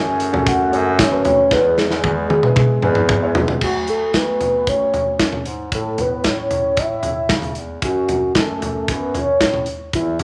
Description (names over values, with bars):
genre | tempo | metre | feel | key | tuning
piano-driven pop | 114 BPM | 4/4 | straight | F# minor | A4 = 442 Hz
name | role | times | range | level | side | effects
warm velvety synth lead | melody | 0.0-10.2 s | E4 to G#5 | -22 LUFS | equal | chorus, tremolo
dark upright piano | accompaniment | 0.0-3.6 s | E3 to C#5 | -24 LUFS | equal | none
warm bass clarinet | bass | 0.0-10.2 s | C#2 to C#3 | -27 LUFS | equal | none
modern studio drum kit | drums | 0.2-10.2 s | crash cymbal, hi-hat, kick drum, snare drum, toms | -22 LUFS | equal | none
room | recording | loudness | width
moderate large studio reverb, RT60 1.3 s | none | -18 LUFS | mono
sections
0.0-3.6 A section; 3.6-10.2 B section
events
drum fill 1.5-3.6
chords
0.0 F#m; 1.5 E; 3.6 Dmaj7; 5.7 A; 7.8 F#m